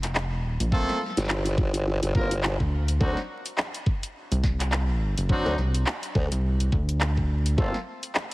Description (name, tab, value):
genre	glitch hop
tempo	105 BPM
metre	4/4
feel	swing 58% on 16ths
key	G minor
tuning	A4 = 440 Hz
part	rubbery square bass	bass	0.0-7.6 s	F1 to D2	-24 LUFS	equal	tube saturation
part	drum and bass drum kit	drums	0.0-8.3 s	handclaps, hi-hat, snare drum	-30 LUFS	equal	none
part	bright horn section	stabs	0.7-7.8 s	F#3 to Bb4	-32 LUFS	equal	vintage 12-bit sampler grit, sidechain pumping, digital delay
part	electronic kick drum	drums	0.7-7.7 s	none	-25 LUFS	equal	none
part	formant-sweep wobble bass	bass	1.2-7.7 s	G1 to D2	-25 LUFS	equal	chorus
room	little or no reverb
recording	heavily compressed radio sound, vinyl crackle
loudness	-23 LUFS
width	side -20 dB against mid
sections	0.0-8.3 A section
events	none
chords	0.0 Gm11; 3.0 D7; 7.6 Gm11